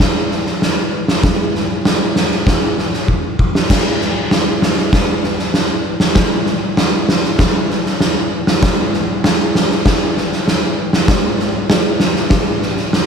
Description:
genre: rock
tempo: 97 BPM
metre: 4/4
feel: straight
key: none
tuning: none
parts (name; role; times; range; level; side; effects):
- oversized low-tuned drum kit; drums; 0.0-13.1 s; crash cymbal, kick drum, snare drum, splash cymbal; -13 LUFS; equal; none
room: moderate concert hall reverb, RT60 1.9 s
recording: none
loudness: -13 LUFS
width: side -6 dB against mid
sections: 0.0-13.1 A section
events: build-up 0.0-13.1; drum fill 3.1-3.7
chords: none

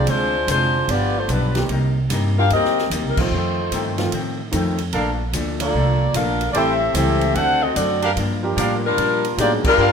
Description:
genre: jazz, big band swing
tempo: 148 BPM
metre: 4/4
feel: swing 65% on 8ths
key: G minor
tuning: A4 = 444 Hz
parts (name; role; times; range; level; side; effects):
- warm saxophone section; melody; 0.0-9.9 s; G3 to F#5; -19 LUFS; left 2 dB; none
- clear concert grand piano; accompaniment; 0.0-9.9 s; D3 to Bb4; -26 LUFS; right 2 dB; none
- upright bass; bass; 0.0-9.9 s; F1 to Bb2; -22 LUFS; right 1 dB; none
- vintage hollow-body jazz guitar; accompaniment; 0.1-9.9 s; F2 to F#4; -27 LUFS; left 4 dB; none
- swinging big-band drum kit; drums; 0.1-9.7 s; crash cymbal, hi-hat, kick drum, ride cymbal, snare drum; -29 LUFS; right 2 dB; none
- warm trumpet section; stabs; 4.9-9.9 s; D4 to G5; -24 LUFS; right 3 dB; none
room: moderate large studio reverb, RT60 1.3 s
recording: minimal, uncompressed stereo recording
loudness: -17 LUFS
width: side -6 dB against mid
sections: 0.0-9.9 A section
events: band accent 3.1, 9.6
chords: 0.1 Dm7b5; 0.9 G7; 1.7 Cm7; 3.3 F7; 4.9 Bbmaj7; 6.6 Am7; 7.4 D7; 8.2 Gm7

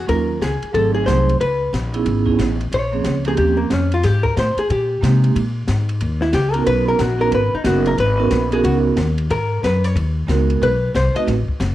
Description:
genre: jazz, small-group swing and bop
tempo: 182 BPM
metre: 4/4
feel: swing 63% on 8ths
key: G# minor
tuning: A4 = 440 Hz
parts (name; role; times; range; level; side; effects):
- hollow-body jazz guitar; melody; 0.0-11.2 s; A#3 to D#5; -20 LUFS; left 1 dB; cassette tape
- upright bass; bass; 0.0-11.7 s; F#1 to B#2; -19 LUFS; left 1 dB; none
- vibraphone with medium hard mallets; accompaniment; 0.1-11.3 s; E#3 to B4; -20 LUFS; right 6 dB; none
- open jazz drum kit; drums; 0.1-11.7 s; hi-hat, kick drum, ride cymbal, snare drum; -29 LUFS; left 1 dB; none
room: light reverb, small room ambience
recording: home recording on cassette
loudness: -15 LUFS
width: side -14 dB against mid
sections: 0.0-9.3 A section; 9.3-11.7 A section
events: hollow-body jazz guitar solo 0.0-11.7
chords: 0.1 D#m7; 0.7 G#7b9; 1.4 C#m7; 2.7 A#m7; 3.4 D#13; 4.0 G#maj7; 5.4 G#sus2; 6.0 D#5; 6.7 G#m11; 9.3 G#m9; 10.6 B7(no3)

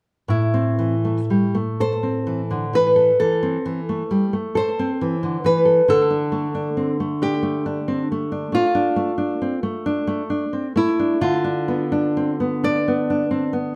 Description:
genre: romantic duo for nylon-string guitar and classical guitar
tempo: 39-47 BPM (dotted quarters)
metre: 12/8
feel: rubato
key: A minor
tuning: A4 = 444 Hz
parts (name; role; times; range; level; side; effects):
- nylon-string guitar; melody; 0.3-13.8 s; E4 to D5; -24 LUFS; equal; slapback echo
- nylon-string guitar; accompaniment; 0.3-13.8 s; A2 to A4; -24 LUFS; equal; none
room: moderate studio reverb, RT60 0.8 s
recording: dark, warm production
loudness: -21 LUFS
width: mono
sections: 0.3-13.8 A section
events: none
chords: 0.3 Am; 5.9 Dm; 11.2 Bdim/D

